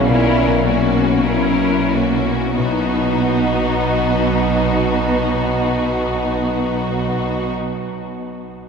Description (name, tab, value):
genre	classical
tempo	42-56 BPM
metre	4/4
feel	rubato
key	B major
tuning	A4 = 441 Hz
part	rich studio violin section	melody	0.0-7.5 s	F#4 to A#4	-25 LUFS	left 4 dB	none
part	rich studio violin section	second line	0.0-7.5 s	C#4 to E4	-23 LUFS	left 3 dB	none
part	rich studio viola section	accompaniment	0.0-7.5 s	A#3 to C#4	-23 LUFS	equal	none
part	warm bassoon	accompaniment	0.0-7.5 s	A#2 to C#3	-23 LUFS	right 2 dB	none
part	concert harp	arpeggios	0.0-7.8 s	B2 to D#5	-25 LUFS	left 5 dB	none
part	clear studio cello section	bass	0.0-7.5 s	B2	-24 LUFS	right 2 dB	none
part	rich studio double bass section	bass	0.0-7.5 s	B1	-24 LUFS	right 4 dB	none
room	wet cathedral reverb, RT60 5.4 s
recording	none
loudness	-15 LUFS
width	side -6 dB against mid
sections	0.0-2.6 A section; 2.6-7.4 B section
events	slowing down 0.0-2.6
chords	0.0 F#7/B; 2.6 B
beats	0.09 1.26 | 2.58 3.77 4.95 6.15